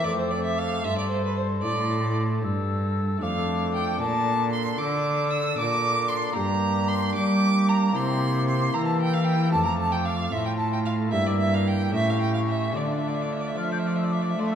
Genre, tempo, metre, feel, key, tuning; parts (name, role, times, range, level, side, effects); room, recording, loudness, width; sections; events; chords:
classical, baroque-style sonata movement with continuo; 76 BPM (dotted quarters); 12/8; straight; D minor from 3.2 s; A4 = 440 Hz
hollow concert flute; melody; 0.0-14.6 s; C6 to G6; -33 LUFS; left 7 dB
clear violin; second line; 0.0-14.6 s; B4 to E6; -28 LUFS; right 2 dB
chamber organ, cornet; accompaniment; 0.0-14.6 s; F2 to A4; -28 LUFS; left 1 dB
rich cello; bass; 0.0-14.6 s; F2 to A3; -26 LUFS; right 1 dB
wet recital hall reverb, RT60 1.4 s; dark, warm production; -22 LUFS; side -8 dB against mid
0.0-14.6 A section
0.1 F; 3.2 Dm/F; 6.4 Gm; 8.0 C7; 9.5 F; 11.1 Edim/G; 11.9 A7; 12.8 Dm